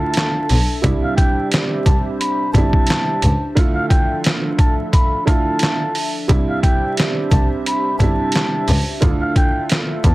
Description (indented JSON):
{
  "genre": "hip hop, boom-bap hip-hop",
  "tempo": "88 BPM",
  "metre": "4/4",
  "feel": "swing 56% on 16ths",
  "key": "D minor",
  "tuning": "A4 = 440 Hz",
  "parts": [
    { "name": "trumpet with cup mute", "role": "melody", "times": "0.0-10.1 s", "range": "F5 to B5", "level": "-23 LUFS", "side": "equal", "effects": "high-pass filter, low-pass filter" },
    { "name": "dark upright piano", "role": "accompaniment", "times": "0.0-10.1 s", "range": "C3 to F4", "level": "-23 LUFS", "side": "right 3 dB", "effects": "cassette tape, high-pass filter, low-pass filter" },
    { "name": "dark analog pad", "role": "sustained chords", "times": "0.0-10.1 s", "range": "F3 to E5", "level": "-27 LUFS", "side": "left 1 dB", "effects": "chorus, high-pass filter, low-pass filter" },
    { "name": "trip hop sampler-style drum kit", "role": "drums", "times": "0.1-10.1 s", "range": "handclaps, hi-hat, kick drum, snare drum", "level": "-17 LUFS", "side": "equal", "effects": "none" },
    { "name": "rich double bass", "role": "bass", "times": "0.5-10.1 s", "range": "G1 to E2", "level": "-18 LUFS", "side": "equal", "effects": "none" }
  ],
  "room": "light reverb",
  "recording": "dense, heavily limited modern master, vinyl crackle",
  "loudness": "-15 LUFS",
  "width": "side -19 dB against mid",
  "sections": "0.0-10.1 A section",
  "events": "none",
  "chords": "0.0 Dmadd9; 0.8 Cadd9; 3.6 Dmadd9; 6.3 Cadd9; 9.0 Dmadd9"
}